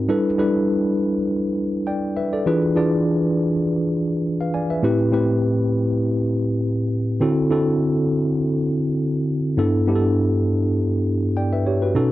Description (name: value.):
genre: soul.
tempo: 101 BPM.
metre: 4/4.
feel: swing 54% on 16ths.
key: unclear.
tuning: A4 = 440 Hz.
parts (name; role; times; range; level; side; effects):
mellow tine electric piano; solo; 0.0-12.1 s; G2 to G#5; -18 LUFS; equal; medium stereo tremolo.
room: digital ambience.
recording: dry, close 1970s-style studio recording.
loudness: -18 LUFS.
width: side -15 dB against mid.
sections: 0.0-12.1 A section.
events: none.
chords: 0.1 G69; 2.5 E7b9; 4.8 Am9; 7.2 D7; 9.6 G69.